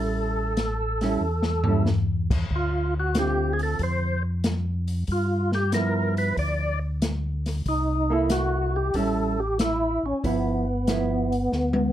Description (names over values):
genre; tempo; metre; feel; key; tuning
soul jazz organ trio; 93 BPM; 4/4; swing 69% on 8ths; unclear; A4 = 440 Hz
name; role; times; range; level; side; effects
percussive tonewheel organ; melody; 0.0-11.9 s; B3 to D5; -26 LUFS; equal; slow rotary speaker, overdrive, chorus vibrato
hollow-body jazz guitar; accompaniment; 0.0-11.3 s; D3 to A4; -28 LUFS; right 4 dB; none
mellow tonewheel organ; bass; 0.0-11.9 s; G1 to G2; -27 LUFS; equal; overdrive, chorus vibrato, slow rotary speaker
open jazz drum kit; drums; 0.6-11.9 s; crash cymbal, hi-hat, kick drum, snare drum, toms; -27 LUFS; left 1 dB; none
room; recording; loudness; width
light reverb; dark, warm production; -22 LUFS; side -12 dB against mid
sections
0.0-11.9 A section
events
drum fill 1.2-1.9, 11.5-11.9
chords
0.0 A7; 2.5 Dm7; 5.1 G6; 7.7 C6; 9.0 A7; 10.2 G6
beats
0.57 1.21 1.86 | 2.50 3.15 3.79 4.44 | 5.08 5.73 6.37 7.02 | 7.66 8.31 8.95 9.60 | 10.24 10.88 11.53